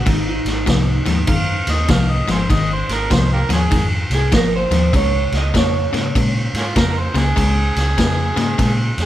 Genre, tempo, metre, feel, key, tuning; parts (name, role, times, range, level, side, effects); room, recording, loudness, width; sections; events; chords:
electric blues shuffle; 98 BPM; 4/4; swing 64% on 8ths; Ab major; A4 = 440 Hz
electric guitar through a small old amp; melody; 0.0-9.1 s; Eb4 to Eb5; -23 LUFS; right 4 dB
overdriven semi-hollow guitar; riff; 0.0-9.1 s; Ab2 to Bb3; -21 LUFS; left 4 dB
vintage muted fingered electric bass; bass; 0.1-9.1 s; Ab1 to Bb2; -20 LUFS; equal
vintage drum kit; drums; 0.1-9.1 s; kick drum, ride cymbal, snare drum; -19 LUFS; equal
overdriven harmonica; second line; 1.3-8.9 s; Bb3 to F5; -23 LUFS; right 2 dB
light reverb; band playing live in one room; -14 LUFS; side -13 dB against mid
0.0-9.1 A section
0.1 Ab; 4.9 Db